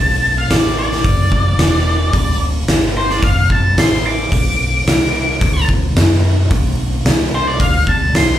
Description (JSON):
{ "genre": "blues rock power trio and southern rock", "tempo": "110 BPM", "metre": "4/4", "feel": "straight", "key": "D mixolydian", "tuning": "A4 = 440 Hz", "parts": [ { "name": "octave-fuzz lead guitar", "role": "melody", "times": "0.0-8.4 s", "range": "C5 to D6", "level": "-18 LUFS", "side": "left 1 dB", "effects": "distortion, slapback echo" }, { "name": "vintage muted fingered electric bass", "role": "bass", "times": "0.0-8.4 s", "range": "D1 to F#2", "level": "-17 LUFS", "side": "equal", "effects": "none" }, { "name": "oversized low-tuned drum kit", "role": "drums", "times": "0.5-8.3 s", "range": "hi-hat, kick drum, snare drum", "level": "-15 LUFS", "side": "equal", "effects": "none" } ], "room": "little or no reverb", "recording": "live gig heard through the venue's PA, club ambience", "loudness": "-12 LUFS", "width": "side -12 dB against mid", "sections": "0.0-8.4 A section", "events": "lead electric guitar solo 0.0-8.4", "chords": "0.0 D", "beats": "0.50 | 1.04 1.59 2.13 2.68 | 3.23 3.77 4.32 4.87 | 5.41 5.96 6.50 7.05 | 7.60 8.14" }